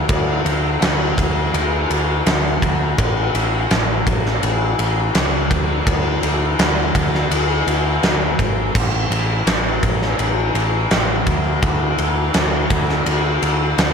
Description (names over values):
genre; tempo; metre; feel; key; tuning
quiet-loud alternative rock; 83 BPM; 4/4; straight; unclear; A4 = 441 Hz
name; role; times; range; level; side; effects
growling picked electric bass; bass; 0.0-13.9 s; G#1 to D2; -20 LUFS; equal; overdrive
big rock drum kit; drums; 0.1-13.9 s; crash cymbal, kick drum, ride cymbal, snare drum; -17 LUFS; left 1 dB; none
room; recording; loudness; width
light reverb; none; -16 LUFS; side -6 dB against mid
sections
0.0-13.9 A section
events
none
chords
none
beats
| 0.09 0.82 1.54 2.26 | 2.98 3.71 4.43 5.15 | 5.87 6.59 7.31 8.03 | 8.75 9.47 10.19 10.91 | 11.63 12.35 13.06 13.78